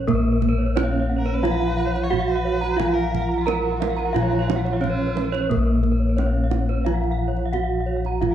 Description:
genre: Balinese gamelan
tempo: 88 BPM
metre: 4/4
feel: straight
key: Bb pelog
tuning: A4 = 440 Hz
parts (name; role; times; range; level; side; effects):
- gamelan-type bronze metallophone; melody; 0.0-8.3 s; Bb3 to Bb4; -25 LUFS; right 4 dB; none
- gamelan-type bronze metallophone; accompaniment; 0.0-8.3 s; F3-30c to Bb3; -28 LUFS; equal; none
- gamelan-type bronze metallophone; arpeggios; 0.0-8.3 s; Bb4 to Bb5; -30 LUFS; left 3 dB; none
- gamelan-type bossed gongs; bass; 0.0-8.3 s; Bb1 to Bb4; -24 LUFS; left 2 dB; none
- kendang; percussion; 0.1-8.3 s; none; -29 LUFS; right 7 dB; none
- gamelan-type bronze metallophone; arpeggios; 0.2-8.3 s; Cb5+20c to Bb5; -31 LUFS; right 6 dB; none
- clear erhu; second line; 1.2-8.3 s; F4-35c to Db5-27c; -33 LUFS; equal; none
room: moderate recital hall reverb, RT60 1.4 s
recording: dark, warm production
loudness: -19 LUFS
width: side -10 dB against mid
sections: 0.1-8.3 A section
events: none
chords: none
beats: | 0.07 0.75 1.43 2.11 | 2.79 3.47 4.14 4.82 | 5.50 6.18 6.86 7.53 | 8.21

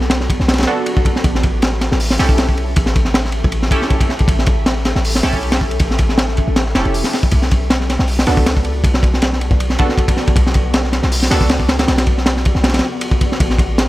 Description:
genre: drum and bass, jungle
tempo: 158 BPM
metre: 4/4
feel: swing 54% on 16ths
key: B minor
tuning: A4 = 440 Hz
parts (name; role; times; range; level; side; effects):
- band-passed chord stab; stabs; 0.0-12.8 s; B3 to A4; -23 LUFS; right 2 dB; chorus, dub echo
- warm 808-style bass; bass; 0.0-13.9 s; E1 to C#2; -18 LUFS; equal; none
- crunchy breakbeat drum kit; drums; 0.0-13.9 s; hi-hat, kick drum, ride cymbal, snare drum; -15 LUFS; equal; none
room: small room ambience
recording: none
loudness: -13 LUFS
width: side -17 dB against mid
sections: 0.0-13.9 A section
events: none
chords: 0.0 Bm7; 1.2 A7; 7.3 Bm7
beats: 0.11 0.49 0.87 | 1.25 1.63 2.00 2.38 | 2.77 3.15 3.52 3.90 | 4.28 4.66 5.04 5.42 | 5.80 6.18 6.56 6.94 | 7.32 7.70 8.08 8.46 | 8.84 9.22 9.60 9.98 | 10.36 10.74 11.12 11.50 | 11.88 12.26 12.64 13.02 | 13.40 13.78

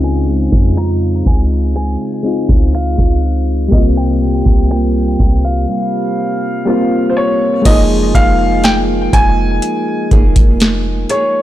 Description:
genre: contemporary R&B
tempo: 61 BPM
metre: 4/4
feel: straight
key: F minor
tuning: A4 = 440 Hz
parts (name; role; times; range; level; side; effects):
- warm grand piano; melody; 0.0-11.4 s; C5 to Bb5; -19 LUFS; equal; ping-pong delay
- soft electric-piano-like synth keys; accompaniment; 0.0-11.4 s; G3 to Ab4; -17 LUFS; left 3 dB; chorus
- nylon-string guitar; arpeggios; 0.0-11.4 s; C3 to Ab4; -21 LUFS; right 5 dB; ping-pong delay
- warm 808-style bass; bass; 0.0-11.1 s; F1 to F2; -16 LUFS; equal; none
- booming analog drum machine; drums; 0.0-11.3 s; crash cymbal, finger snaps, hi-hat, kick drum, snare drum; -12 LUFS; equal; soft clipping on snare
room: digital ambience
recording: blown-out, overdriven recording, overdrive, low-pass filter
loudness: -11 LUFS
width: side -13 dB against mid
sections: 0.0-7.7 A section; 7.7-11.4 B section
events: filter sweep 0.0-7.7; break 5.7-7.7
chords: 0.0 Dbmaj7; 3.7 C7sus4; 7.7 Fm7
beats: 0.77 1.75 2.74 | 3.72 4.70 5.69 6.67 | 7.65 8.64 9.62 10.61

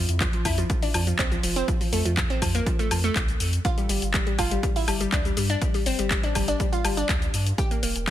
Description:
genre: progressive house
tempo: 122 BPM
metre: 4/4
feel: straight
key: unclear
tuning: A4 = 439 Hz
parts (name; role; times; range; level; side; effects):
- analog pluck; arpeggios; 0.0-8.1 s; F3 to G4; -27 LUFS; equal; chorus, sidechain pumping, dub echo
- round analog bass; bass; 0.0-8.1 s; E1 to G2; -27 LUFS; equal; sidechain pumping
- house drum kit; drums; 0.1-8.1 s; handclaps, hi-hat, shaker, woodblock; -28 LUFS; left 2 dB; sidechain pumping on hats, small room reverb, sidechain pumping on perc
- electronic kick drum; drums; 0.2-8.1 s; none; -26 LUFS; equal; small room reverb
room: digital ambience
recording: dense, heavily limited modern master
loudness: -22 LUFS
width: side -12 dB against mid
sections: 0.0-8.1 A section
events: none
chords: 0.0 F; 3.6 G5; 7.6 Edim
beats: 0.21 0.70 1.19 | 1.68 2.17 2.67 3.16 | 3.65 4.14 4.63 5.12 | 5.62 6.11 6.60 7.09 | 7.58 8.08

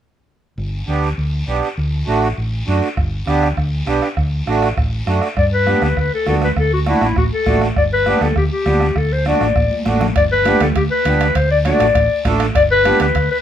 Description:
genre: latin, cumbia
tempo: 200 BPM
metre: 4/4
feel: straight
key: G major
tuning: A4 = 440 Hz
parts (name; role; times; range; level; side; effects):
- hollow-body short-scale fingered electric bass; bass; 0.6-13.3 s; G1 to G2; -19 LUFS; equal; none
- guiro; percussion; 0.6-13.4 s; none; -31 LUFS; left 2 dB; none
- accordion; accompaniment; 0.9-13.1 s; A3 to A4; -19 LUFS; right 4 dB; none
- bombo; percussion; 3.0-13.3 s; none; -22 LUFS; right 1 dB; none
- warm clarinet; melody; 5.4-13.4 s; E4 to D5; -16 LUFS; left 3 dB; none
- congas; percussion; 5.7-13.0 s; none; -24 LUFS; right 1 dB; none
- timbales; percussion; 10.2-13.3 s; none; -30 LUFS; right 6 dB; none
room: moderate studio reverb, RT60 0.6 s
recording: minimal, uncompressed stereo recording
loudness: -14 LUFS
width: side -10 dB against mid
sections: 0.6-5.4 A section; 5.4-13.4 B section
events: drum fill 9.7-10.2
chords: 0.6 G; 1.8 D; 3.0 G; 4.2 D; 5.4 G; 6.6 D; 7.8 G; 9.0 D; 10.2 G; 11.4 D; 12.6 G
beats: | 0.58 0.88 1.18 1.48 | 1.78 2.08 2.38 2.67 | 2.97 3.27 3.57 3.87 | 4.17 4.47 4.77 5.07 | 5.37 5.67 5.97 6.27 | 6.57 6.87 7.16 7.46 | 7.76 8.06 8.36 8.66 | 8.96 9.26 9.56 9.86 | 10.16 10.46 10.76 11.05 | 11.35 11.65 11.95 12.25 | 12.55 12.85 13.15

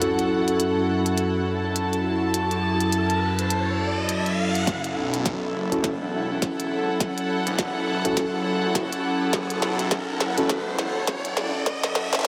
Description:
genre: glitch hop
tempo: 103 BPM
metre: 4/4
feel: swing 59% on 16ths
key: F# minor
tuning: A4 = 440 Hz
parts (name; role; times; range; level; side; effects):
- warm analog pad; sustained chords; 0.0-12.3 s; F#2 to A4; -30 LUFS; equal; chorus, sidechain pumping
- tine electric piano; stabs; 0.0-10.6 s; C#4 to A4; -30 LUFS; equal; sidechain pumping, low-pass filter, tape echo
- glitchy drum kit; drums; 0.0-12.3 s; hi-hat, snare drum; -30 LUFS; equal; overdrive
- riser; sound effects; 1.5-12.3 s; none; -35 LUFS; equal; none
- warm studio string section; texture; 0.0-12.3 s; E4 to A5; -31 LUFS; equal; sidechain pumping
- phased detuned saw bass; bass; 4.7-12.3 s; E1 to B1; -34 LUFS; equal; phaser, high-pass filter
- electronic kick drum; drums; 4.7-12.3 s; none; -32 LUFS; equal; overdrive, high-pass filter on kick, high-pass filter on room
room: wet huge ambient reverb, RT60 5.0 s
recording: dreamy mix soaked in reverb, high-pass filter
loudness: -24 LUFS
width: mono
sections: 0.0-4.7 A section; 4.7-12.3 B section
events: filter sweep on tine electric piano 0.0-4.7; riser 1.5-4.7, 4.7-12.3; build-up 4.7-12.3; drum fill 4.7-12.3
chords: 0.0 F#m7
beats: | 0.01 0.60 1.18 1.76 | 2.34 2.93 3.51 4.09 | 4.67 5.26 5.84 6.42 | 7.00 7.59 8.17 8.75 | 9.34 9.92 10.50 11.08 | 11.66 12.25

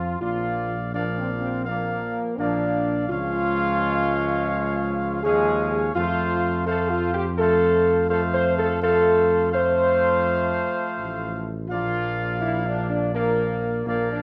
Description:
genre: classical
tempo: 83 BPM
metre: 4/4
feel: straight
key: F major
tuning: A4 = 440 Hz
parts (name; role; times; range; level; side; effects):
- dark trumpet section; melody; 0.0-14.2 s; F4 to F5; -30 LUFS; equal; none
- bright trombone section; sustained chords; 0.0-14.2 s; F3 to Bb3; -33 LUFS; equal; none
- mellow French horn section; sustained chords; 0.0-14.2 s; Bb3 to C5; -25 LUFS; equal; none
- mellow tuba; bass; 0.0-14.2 s; A1 to F2; -30 LUFS; equal; none
room: moderate recital hall reverb, RT60 1.3 s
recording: none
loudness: -23 LUFS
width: mono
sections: 0.0-14.2 A section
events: none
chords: 0.2 Bb; 3.1 Db; 6.0 F; 11.7 Bb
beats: | 0.21 0.93 1.66 2.38 | 3.10 3.81 4.53 5.24 | 5.95 6.66 7.38 8.10 | 8.82 9.54 10.26 10.98 | 11.70 12.42 13.14 13.86

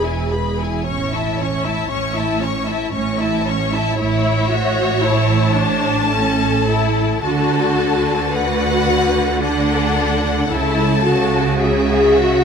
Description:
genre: classical, slow romantic movement for string orchestra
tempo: 56 BPM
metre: 3/4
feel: uneven beats, rubato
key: A major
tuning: A4 = 437 Hz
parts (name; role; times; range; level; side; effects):
- warm symphonic violin section; melody; 0.0-12.4 s; E5 to C#6; -23 LUFS; left 6 dB; none
- warm symphonic violin section; second line; 0.0-12.4 s; F#4 to E5; -23 LUFS; left 3 dB; none
- rich symphonic viola section; accompaniment; 0.0-12.4 s; C#4 to G#4; -20 LUFS; left 1 dB; none
- rich symphonic cello section; bass; 0.0-12.4 s; E2 to D3; -22 LUFS; right 4 dB; none
- rich symphonic double bass section; bass; 0.0-12.4 s; E1 to D2; -22 LUFS; right 4 dB; none
room: moderate recital hall reverb, RT60 1.7 s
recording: none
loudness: -15 LUFS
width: side -6 dB against mid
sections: 0.0-12.4 A section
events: none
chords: 0.0 E; 0.9 A; 7.2 D; 10.5 A/C#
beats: | 0.88 1.92 2.94 | 4.00 5.05 6.12 | 7.25 8.34 9.43 | 10.51 11.61

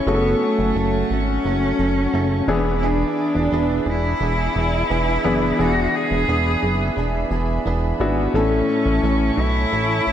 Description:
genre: piano-driven pop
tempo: 87 BPM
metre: 4/4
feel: straight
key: unclear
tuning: A4 = 440 Hz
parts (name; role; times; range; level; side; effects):
- clear upright piano; accompaniment; 0.0-10.1 s; A2 to A4; -24 LUFS; left 2 dB; none
- warm studio string section; sustained chords; 0.0-10.1 s; G#4 to C#6; -30 LUFS; equal; none
- direct-recorded clean electric guitar; riff; 0.0-10.1 s; F#2 to A4; -27 LUFS; right 7 dB; analog chorus
- rich cello; melody; 0.1-10.1 s; A3 to G#4; -22 LUFS; left 1 dB; none
- chorused synth bass; bass; 0.1-10.1 s; E1 to B1; -22 LUFS; equal; none
room: moderate lush hall reverb, RT60 2.5 s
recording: dreamy mix soaked in reverb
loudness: -17 LUFS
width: side -10 dB against mid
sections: 0.0-10.1 A section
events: none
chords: 0.1 F#m; 2.5 E7; 8.3 A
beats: | 0.07 0.76 1.45 2.14 | 2.83 3.52 4.21 4.90 | 5.59 6.28 6.97 7.66 | 8.34 9.03 9.72

